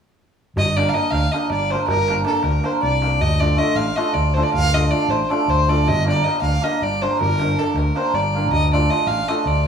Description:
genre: balkan folk, Balkan wedding band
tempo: 317 BPM (eighths)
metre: 7/8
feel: straight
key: G minor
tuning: A4 = 440 Hz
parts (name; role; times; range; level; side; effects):
- rich fiddle; melody; 0.6-9.7 s; A4 to F5; -22 LUFS; left 1 dB; plate reverb, tape echo
- overdriven fingered electric bass; bass; 0.6-9.7 s; G1 to D2; -21 LUFS; equal; none
- darbuka; percussion; 0.6-9.6 s; none; -28 LUFS; right 1 dB; none
- hammered dulcimer; accompaniment; 0.8-9.4 s; A3 to Bb4; -21 LUFS; right 1 dB; plate reverb
room: wet studio reverb, RT60 0.6 s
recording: rough home demo mix, small room ambience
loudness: -17 LUFS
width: side -7 dB against mid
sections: 0.6-9.7 A section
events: none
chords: 0.6 Gm; 3.2 Dm; 5.9 Gm; 8.5 Dm

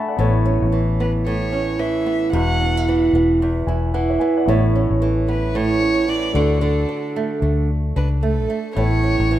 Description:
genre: acoustic pop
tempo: 112 BPM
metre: 4/4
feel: swing 60% on 16ths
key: A major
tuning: A4 = 438 Hz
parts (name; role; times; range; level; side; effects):
- flamenco guitar; accompaniment; 0.0-9.4 s; E2 to E4; -20 LUFS; right 3 dB; none
- warm concert grand piano; accompaniment; 0.0-9.4 s; A3 to C#6; -28 LUFS; left 5 dB; none
- vintage muted fingered electric bass; bass; 0.2-9.4 s; E1 to D2; -20 LUFS; left 1 dB; none
- warm violin; melody; 1.0-9.4 s; A4 to F#5; -26 LUFS; equal; tape echo
room: light reverb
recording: rough home demo mix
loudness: -16 LUFS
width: side -12 dB against mid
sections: 0.0-9.4 A section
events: grand piano fill 0.0, 3.4-4.5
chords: 0.2 Aadd9; 2.3 Esus2; 4.5 Aadd9; 6.3 D; 8.8 Aadd9

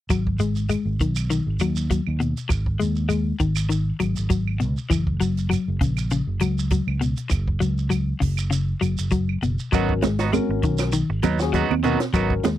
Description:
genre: afrobeat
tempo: 100 BPM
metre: 4/4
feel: swing 54% on 16ths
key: G# minor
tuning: A4 = 439 Hz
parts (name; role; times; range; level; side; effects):
- electric guitar at the edge of break-up; arpeggios; 0.1-12.6 s; B2 to G#3; -25 LUFS; left 4 dB; none
- fingered electric bass; bass; 0.1-12.6 s; F#1 to D#2; -24 LUFS; right 1 dB; none
- compact cocktail drum kit; drums; 0.1-12.6 s; hi-hat, kick drum, snare drum; -25 LUFS; right 1 dB; none
- claves; percussion; 0.1-12.3 s; none; -36 LUFS; right 22 dB; none
- shekere; percussion; 0.1-12.6 s; none; -32 LUFS; right 4 dB; none
- bright tine electric piano; accompaniment; 9.7-12.5 s; C#4 to A#4; -27 LUFS; left 12 dB; phaser
- electric guitar at the edge of break-up; stabs; 9.7-12.5 s; F#3 to F#4; -25 LUFS; right 8 dB; none
- congas; percussion; 10.0-12.6 s; none; -26 LUFS; right 19 dB; none
room: little or no reverb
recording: dry, close 1970s-style studio recording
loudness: -20 LUFS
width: side -13 dB against mid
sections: 0.1-12.6 A section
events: none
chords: 0.1 G#m7; 4.9 F#5; 9.7 G#m7

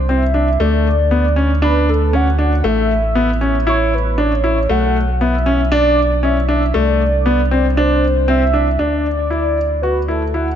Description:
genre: piano and strings electronica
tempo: 117 BPM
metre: 4/4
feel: straight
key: D major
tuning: A4 = 441 Hz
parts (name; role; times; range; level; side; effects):
- warm velvety synth lead; melody; 0.0-10.6 s; A4 to F#5; -19 LUFS; equal; chorus
- warm sub bass; bass; 0.0-10.6 s; A1 to D2; -17 LUFS; equal; none
- clear grand piano; riff; 0.1-10.5 s; A3 to F#4; -17 LUFS; left 1 dB; tape echo
room: light reverb, small room ambience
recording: nothing above 7.7 kHz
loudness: -13 LUFS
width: side -9 dB against mid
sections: 0.0-8.8 A section; 8.8-10.6 B section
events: none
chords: 0.0 Cadd9; 0.6 D; 2.7 A; 4.7 Bm; 6.8 Cadd9; 8.8 Dadd9

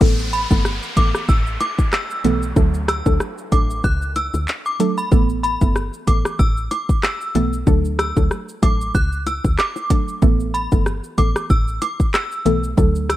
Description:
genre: dancehall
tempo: 94 BPM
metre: 4/4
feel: swing 56% on 16ths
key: unclear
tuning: A4 = 442 Hz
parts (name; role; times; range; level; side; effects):
- mallet-like synth pluck; accompaniment; 0.0-13.2 s; E3 to A4; -22 LUFS; right 1 dB; chorus, phaser, sidechain pumping
- woody FM bass; bass; 0.0-13.2 s; G1 to D2; -22 LUFS; equal; none
- afro-pop drum kit; drums; 0.0-13.2 s; crash cymbal, handclaps, hi-hat, kick drum, rim click, shaker; -18 LUFS; equal; none
- bongos; percussion; 0.0-12.9 s; none; -30 LUFS; left 5 dB; none
- downlifter; sound effects; 0.0-5.1 s; none; -31 LUFS; equal; none
- synth chime; melody; 0.3-13.2 s; B5 to F#6; -24 LUFS; equal; ensemble chorus, digital delay
room: digital ambience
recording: rough home demo mix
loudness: -16 LUFS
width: side -14 dB against mid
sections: 0.0-13.2 A section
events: none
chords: 0.0 Asus2; 2.6 D; 5.1 Asus2; 7.7 D; 10.2 Asus2

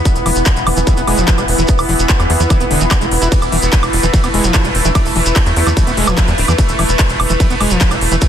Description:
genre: psychedelic trance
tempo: 147 BPM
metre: 4/4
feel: straight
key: unclear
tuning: A4 = 442 Hz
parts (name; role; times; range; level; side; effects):
- bubbling stepped-filter texture; sustained chords; 0.0-8.3 s; E3 to B3; -20 LUFS; equal; chorus, built-in reverb, sidechain pumping
- ethereal airy pad; texture; 0.0-8.3 s; E4 to B5; -21 LUFS; equal; ensemble chorus, built-in reverb, sidechain pumping
- big-room dance drum kit; drums; 0.1-8.3 s; handclaps, hi-hat, ride cymbal, woodblock; -19 LUFS; right 1 dB; none
- electronic kick drum; drums; 0.1-8.3 s; none; -14 LUFS; equal; distortion
- shekere; percussion; 0.1-8.3 s; none; -25 LUFS; right 3 dB; none
- tight sequencer bass; bass; 0.2-8.2 s; D1 to E2; -17 LUFS; equal; none
- screaming distorted acid line; riff; 0.3-8.2 s; D3 to E4; -20 LUFS; equal; distortion, chorus, auto-pan, sidechain pumping, digital delay
- vowel-sweep wobble bass; second line; 3.6-6.5 s; B3 to D4; -30 LUFS; left 1 dB; none
room: light reverb, digital ambience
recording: dense, heavily limited modern master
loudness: -11 LUFS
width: side -9 dB against mid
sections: 0.0-8.3 A section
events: none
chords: 0.0 E5

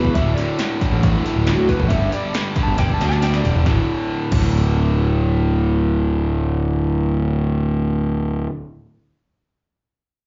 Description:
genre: classic rock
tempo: 136 BPM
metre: 4/4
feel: straight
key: unclear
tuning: A4 = 440 Hz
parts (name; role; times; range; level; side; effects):
- clean lap steel guitar; melody; 0.0-3.6 s; F#4 to A5; -28 LUFS; equal; slapback echo, analog delay
- cranked stack guitar; riff; 0.0-8.5 s; D2 to G3; -28 LUFS; equal; overdrive, slapback echo
- overdriven semi-hollow guitar; riff; 0.0-8.5 s; D2 to G3; -26 LUFS; equal; slapback echo
- fuzz picked electric bass; bass; 0.0-8.5 s; D1 to D2; -22 LUFS; equal; overdrive
- punchy analog drum machine; drums; 0.0-4.4 s; crash cymbal, hi-hat, kick drum, snare drum, toms; -23 LUFS; equal; overdrive
room: light reverb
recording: live gig heard through the venue's PA, club reverb, nothing above 7.5 kHz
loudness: -19 LUFS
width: mono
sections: 0.0-3.7 A section; 3.7-7.2 B section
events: electric slide guitar solo 0.0-3.7; drum fill 2.8-3.7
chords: 0.2 D5; 1.9 G5; 3.7 D5

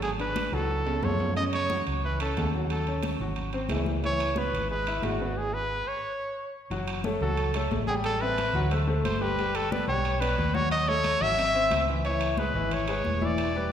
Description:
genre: Afro-Cuban jazz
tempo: 180 BPM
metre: 4/4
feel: straight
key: C# minor, F# minor from 6.7 s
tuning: A4 = 440 Hz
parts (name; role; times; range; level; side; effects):
- clear trumpet; melody; 0.0-13.7 s; F#4 to E5; -28 LUFS; equal; none
- clear grand piano; accompaniment; 0.0-13.7 s; C#3 to G5; -32 LUFS; left 3 dB; none
- hollow-body short-scale fingered electric bass; bass; 0.0-13.7 s; E1 to F#2; -31 LUFS; right 1 dB; none
- congas; percussion; 0.0-13.7 s; none; -36 LUFS; left 2 dB; none
- timbales; percussion; 0.0-13.6 s; none; -37 LUFS; right 4 dB; none
room: wet scoring stage reverb, RT60 1.6 s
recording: recorded in a church or concert hall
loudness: -25 LUFS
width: side -9 dB against mid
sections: 0.0-6.7 A section; 6.7-13.7 B section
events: drum fill 0.5-1.4; stop 5.4-6.7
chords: 0.0 G#m7b5; 0.7 C#; 1.4 F#m7; 2.7 D#m7b5; 3.4 G#aug7; 4.0 C#m7; 5.4 G#madd11; 6.0 N.C.; 6.7 F#m; 8.0 Am9; 8.7 D5; 9.4 G; 10.7 D#m7b5; 11.4 G#; 12.0 C#m7

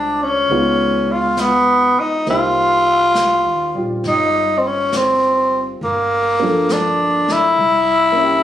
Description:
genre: jazz ballad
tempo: 68 BPM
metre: 4/4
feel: swing 67% on 8ths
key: unclear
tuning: A4 = 440 Hz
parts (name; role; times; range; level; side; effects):
- growling tenor saxophone; melody; 0.0-8.4 s; Bb3 to F4; -14 LUFS; equal; none
- warm baby grand piano; accompaniment; 0.0-8.4 s; F3 to E5; -22 LUFS; right 1 dB; none
- upright bass; bass; 0.0-8.4 s; G1 to Eb2; -31 LUFS; equal; none
- jazz brush drum kit; drums; 0.5-8.4 s; brushed snare drum, hi-hat, snare drum; -29 LUFS; left 2 dB; none
room: moderate studio reverb, RT60 0.8 s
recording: recorded on a phone in the room, studio reverb, compression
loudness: -13 LUFS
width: side -11 dB against mid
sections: 0.0-8.4 A section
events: none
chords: 0.5 Db9; 2.3 Cm7; 5.8 Gm7; 7.6 C7b9

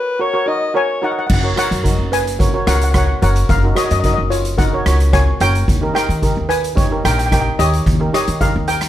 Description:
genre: calypso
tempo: 110 BPM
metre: 4/4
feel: straight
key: F# major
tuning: A4 = 440 Hz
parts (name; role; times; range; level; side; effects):
- steel pan; melody; 0.0-8.9 s; E#4 to G#5; -20 LUFS; left 2 dB; none
- warm alto saxophone; second line; 0.0-1.3 s; B4 to D#5; -20 LUFS; left 4 dB; none
- steel pan; accompaniment; 0.2-8.7 s; D#4 to C#5; -21 LUFS; right 3 dB; none
- upright bass; bass; 1.3-8.9 s; F#1 to D#3; -17 LUFS; equal; none
- street-band drum kit; drums; 1.3-8.9 s; crash cymbal, hi-hat, kick drum, rim click; -19 LUFS; equal; none
room: little or no reverb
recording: none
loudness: -13 LUFS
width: side -12 dB against mid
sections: 0.0-1.3 A section; 1.3-8.9 A section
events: break 0.0-1.3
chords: 0.0 F#; 5.7 D#7

